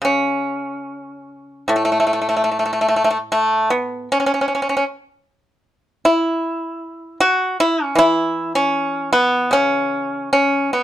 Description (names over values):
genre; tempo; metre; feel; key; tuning
chinese traditional, Chinese solo plucked strings; 76 BPM; 4/4; uneven beats, rubato; unclear; A4 = 439 Hz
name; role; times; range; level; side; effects
pipa; solo; 0.0-10.8 s; A2 to F#4; -16 LUFS; equal; none
room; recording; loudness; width
light reverb; dark, warm production; -16 LUFS; side -12 dB against mid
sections
0.0-10.8 A section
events
none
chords
none